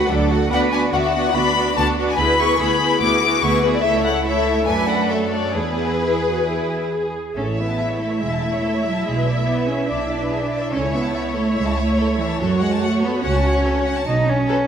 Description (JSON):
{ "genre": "quick classical-period movement for string orchestra", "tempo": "143 BPM", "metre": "4/4", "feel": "rubato", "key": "A major", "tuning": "A4 = 440 Hz", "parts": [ { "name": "rich chamber violin section", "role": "melody", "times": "0.0-14.6 s", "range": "B4 to D6", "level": "-23 LUFS", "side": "left 5 dB", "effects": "none" }, { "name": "rich studio violin section", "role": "second line", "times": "0.0-14.6 s", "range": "F#4 to A5", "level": "-25 LUFS", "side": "left 2 dB", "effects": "none" }, { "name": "rich chamber viola section", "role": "accompaniment", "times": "0.0-14.6 s", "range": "F#3 to G#4", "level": "-24 LUFS", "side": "right 1 dB", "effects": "none" }, { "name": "clear chamber double bass section", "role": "bass", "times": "0.0-14.4 s", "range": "E1 to F#2", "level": "-24 LUFS", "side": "right 2 dB", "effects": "none" }, { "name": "rich chamber cello section", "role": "bass", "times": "0.0-14.7 s", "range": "E3 to B4", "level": "-23 LUFS", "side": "right 2 dB", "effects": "none" } ], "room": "wet scoring stage reverb, RT60 1.9 s", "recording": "none", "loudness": "-17 LUFS", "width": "side -8 dB against mid", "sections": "0.0-7.4 A section; 7.4-14.7 B section", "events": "none", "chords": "0.0 D; 0.5 Bm/D; 2.2 E7/D; 3.8 A/C#; 4.7 D/F#; 5.6 E; 7.4 A; 9.1 E7/B; 10.7 A/C#; 12.4 F#m; 14.1 B", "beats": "0.09 | 0.51 0.93 1.35 1.77 | 2.18 2.60 3.01 3.42 | 3.84 4.26 4.68 5.12 | 5.56 6.02 6.47 6.91 | 7.36 7.79 8.21 8.64 | 9.06 9.47 9.90 10.32 | 10.73 11.15 11.57 11.99 | 12.41 12.82 13.24 13.66 | 14.07 14.49" }